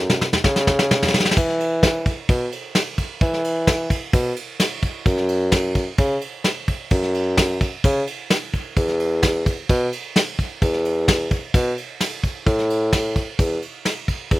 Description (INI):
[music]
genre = indie folk with a building arrangement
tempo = 130 BPM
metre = 4/4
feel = straight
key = unclear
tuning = A4 = 440 Hz
[part]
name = dark bassoon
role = bass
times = 0.0-14.4 s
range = E2 to E3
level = -21 LUFS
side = equal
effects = none
[part]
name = soft brush drum kit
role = drums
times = 0.1-14.4 s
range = crash cymbal, kick drum, ride cymbal, snare drum, toms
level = -20 LUFS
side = equal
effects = none
[sound]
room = little or no reverb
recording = recorded outdoors, with no room sound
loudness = -18 LUFS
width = side -17 dB against mid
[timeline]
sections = 0.0-1.4 A section; 1.4-14.4 B section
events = build-up 0.0-1.4; drum fill 0.0-1.4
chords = none